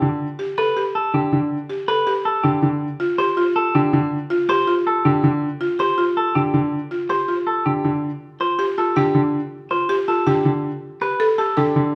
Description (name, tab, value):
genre	classical, minimalist pattern music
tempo	322 BPM (eighths)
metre	7/8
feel	straight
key	G mixolydian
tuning	A4 = 440 Hz
part	clean electric guitar	melody	0.0-11.8 s	G4 to C5	-24 LUFS	equal	none
part	bright baby grand piano	accompaniment	0.0-11.9 s	D3	-22 LUFS	equal	none
part	buzzing marimba with medium hard mallets	arpeggios	0.4-11.8 s	F4 to A4	-24 LUFS	equal	none
room	moderate recital hall reverb, RT60 1.7 s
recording	close, detailed microphones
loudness	-20 LUFS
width	mono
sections	0.0-7.8 A section; 7.8-11.9 A section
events	none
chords	0.0 Dsus4; 2.6 G7(no3); 10.5 Dsus4